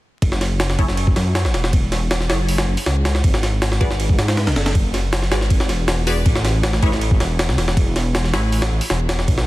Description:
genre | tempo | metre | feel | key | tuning
drum and bass, jungle | 159 BPM | 4/4 | straight | F# minor | A4 = 437 Hz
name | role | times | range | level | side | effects
dark detuned saw bass | bass | 0.2-9.5 s | E1 to G#2 | -19 LUFS | equal | none
jungle sampler-style drum kit | drums | 0.2-9.5 s | hi-hat, kick drum, ride cymbal, snare drum | -19 LUFS | equal | overdrive, studio reverb
filtered dub chord stab | stabs | 0.8-8.4 s | E4 to D5 | -28 LUFS | left 1 dB | phaser, dub echo
room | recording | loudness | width
little or no reverb | dense, heavily limited modern master, vinyl crackle | -16 LUFS | side -18 dB against mid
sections
0.2-9.5 A section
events
none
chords
0.2 F#m7; 3.2 E7; 6.3 A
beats
| 0.22 0.60 0.98 1.35 | 1.73 2.11 2.49 2.86 | 3.24 3.62 4.00 4.37 | 4.75 5.13 5.50 5.88 | 6.26 6.64 7.01 7.39 | 7.77 8.15 8.52 8.90 | 9.28

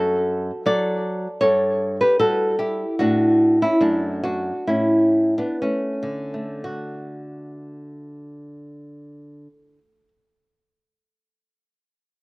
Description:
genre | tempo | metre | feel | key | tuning
classical, baroque-style dance for nylon-string guitar | 56-80 BPM | 4/4 | rubato | D major | A4 = 439 Hz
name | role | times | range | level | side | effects
nylon-string guitar | solo | 0.0-10.1 s | F#2 to D5 | -20 LUFS | equal | slapback echo
room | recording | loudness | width
little or no reverb | recorded outdoors, with no room sound | -18 LUFS | side -26 dB against mid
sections
0.0-6.6 A section; 6.6-10.5 B section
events
slowing down 0.0-6.6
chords
0.0 D/F#; 1.4 Gmaj7(b5, no3); 3.0 D/A; 4.7 A; 6.6 D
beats
0.67 1.42 2.19 | 2.99 3.81 4.68 5.61 | 6.63 7.60 8.59 9.57

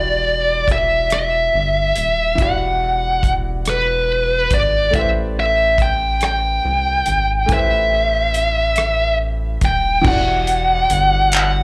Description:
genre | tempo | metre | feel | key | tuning
slow six-eight R&B | 47 BPM (dotted quarters) | 6/8 | straight | E minor | A4 = 440 Hz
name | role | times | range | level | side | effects
high-gain lead guitar | melody | 0.0-11.6 s | B4 to G5 | -19 LUFS | equal | distortion, slapback echo
clear grand piano | accompaniment | 0.0-11.6 s | E3 to D5 | -30 LUFS | equal | none
rubbery square bass | bass | 0.0-11.6 s | D#1 to C2 | -24 LUFS | equal | none
damped 70s drum kit | drums | 0.7-11.5 s | crash cymbal, handclaps, hi-hat, kick drum, rim click | -22 LUFS | equal | none
room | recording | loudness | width
light reverb | live gig heard through the venue's PA, club reverb | -17 LUFS | mono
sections
0.0-10.0 A section; 10.0-11.6 B section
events
none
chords
0.0 Em9; 4.9 Am9; 10.0 Em9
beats
1.11 | 2.38 3.66 | 4.94 6.21 | 7.49 8.77 | 10.04 11.32

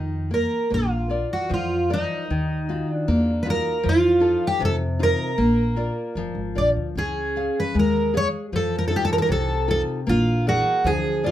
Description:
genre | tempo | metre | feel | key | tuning
fado-style ballad | 77 BPM | 2/4 | rubato | unclear | A4 = 440 Hz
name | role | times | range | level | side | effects
fingerpicked twelve-string acoustic guitar | melody | 0.0-11.3 s | Eb4 to D5 | -22 LUFS | right 1 dB | none
nylon-string guitar | accompaniment | 0.0-11.3 s | C3 to F5 | -25 LUFS | left 2 dB | none
upright bass | bass | 0.0-11.3 s | F1 to F2 | -26 LUFS | equal | none
room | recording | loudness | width
moderate studio reverb, RT60 0.5 s | none | -20 LUFS | side -12 dB against mid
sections
0.7-11.3 A section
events
none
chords
0.0 Eb5; 0.7 Bb; 2.3 Ebmadd9; 3.9 F7; 5.4 Bb; 7.0 Db; 8.5 F7; 10.1 Bb7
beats
| 0.72 1.52 | 2.32 3.10 | 3.86 4.62 | 5.39 6.16 | 6.96 7.76 | 8.53 9.31 | 10.08 10.86

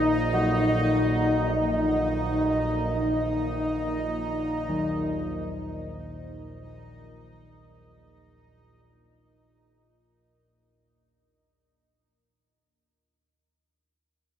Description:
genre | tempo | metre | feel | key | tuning
dark ambient drone | free time | none | none | unclear | A4 = 440 Hz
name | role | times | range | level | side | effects
dark analog pad | sustained chords | 0.0-10.6 s | Bb3 to Eb5 | -26 LUFS | left 1 dB | chorus
overtone-sweeping drone | drone | 0.0-10.7 s | Bb1 to Bb2 | -30 LUFS | equal | chorus, built-in reverb
bubbling stepped-filter texture | texture | 0.0-10.6 s | Eb4 to Eb5 | -33 LUFS | right 3 dB | chorus, built-in reverb
carillon bells | arpeggios | 0.3-12.5 s | Eb3 to Gb4 | -34 LUFS | left 1 dB | diffuse ambient delay
room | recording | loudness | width
wet huge ambient reverb, RT60 8.3 s | dark, warm production | -24 LUFS | side -9 dB against mid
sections
0.0-10.5 A section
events
fade-out 0.0-10.5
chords
0.0 Ebm/Bb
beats
free time

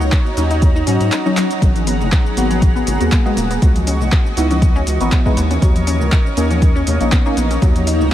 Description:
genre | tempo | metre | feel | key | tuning
deep house | 120 BPM | 4/4 | swing 55% on 16ths | G# minor | A4 = 444 Hz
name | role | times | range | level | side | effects
warm analog pad | sustained chords | 0.0-8.1 s | F#4 to C#6 | -25 LUFS | right 1 dB | chorus, sidechain pumping
round analog bass | bass | 0.0-8.1 s | D#1 to G#2 | -18 LUFS | equal | sidechain pumping
deep house drum kit | drums | 0.0-8.1 s | handclaps, hi-hat, shaker | -25 LUFS | equal | none
granular cloud pad | texture | 0.0-8.1 s | E3 to D#6 | -27 LUFS | equal | built-in reverb, analog chorus, sidechain pumping
electronic kick drum | drums | 0.1-7.7 s | none | -14 LUFS | equal | none
deep mellow chord stab | stabs | 0.4-7.4 s | F#3 to F#4 | -22 LUFS | equal | chorus, phaser, sidechain pumping, tape echo
analog pluck | arpeggios | 0.5-8.0 s | F#3 to D#4 | -24 LUFS | left 2 dB | chorus, sidechain pumping, diffuse ambient delay
congas | percussion | 1.8-8.1 s | none | -25 LUFS | left 4 dB | sidechain pumping on perc
room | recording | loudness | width
light reverb | vinyl crackle | -13 LUFS | side -12 dB against mid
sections
0.0-8.1 A section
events
break 1.1-1.6; drum fill 1.4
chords
0.0 D#m7; 1.6 G#m9; 3.6 C#m11; 5.4 Bmaj9; 7.6 D#m7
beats
0.12 0.62 1.12 | 1.62 2.12 2.62 3.12 | 3.62 4.12 4.62 5.12 | 5.62 6.12 6.62 7.12 | 7.62 8.12

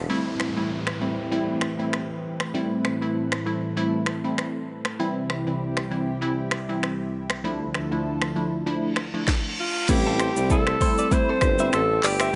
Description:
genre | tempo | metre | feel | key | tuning
afrobeats | 98 BPM | 4/4 | swing 55% on 16ths | A minor | A4 = 440 Hz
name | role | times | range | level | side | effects
lush unison pad | sustained chords | 0.0-12.4 s | C2 to B4 | -34 LUFS | equal | chorus
warm tuba | bass | 0.0-0.1, 9.9-12.3 s | G1 to C2 | -29 LUFS | equal | none
glassy wavetable pluck | accompaniment | 0.1-12.4 s | E3 to E4 | -29 LUFS | equal | chorus
downlifter and reverse cymbal | sound effects | 0.1-5.0, 8.9-9.9 s | none | -37 LUFS | equal | none
afro-pop drum kit | drums | 0.4-12.3 s | crash cymbal, finger snaps, handclaps, hi-hat, kick drum, rim click, shaker, snare drum | -28 LUFS | equal | none
breathy alto saxophone | melody | 9.6-12.4 s | F4 to C5 | -26 LUFS | equal | none
direct-recorded clean electric guitar | riff | 10.1-12.3 s | E4 to E5 | -34 LUFS | equal | spring reverb, delay
room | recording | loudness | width
light reverb | nothing above 10.6 kHz | -25 LUFS | mono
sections
0.1-9.9 A section; 9.9-12.4 B section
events
reverse cymbal 8.9-9.9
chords
0.1 Am7; 5.0 C; 7.4 Dmadd9; 9.9 Am7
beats
| 0.09 0.70 1.32 1.93 | 2.54 3.15 3.77 4.38 | 4.99 5.60 6.21 6.83 | 7.44 8.05 8.66 9.28 | 9.89 10.50 11.11 11.73 | 12.34

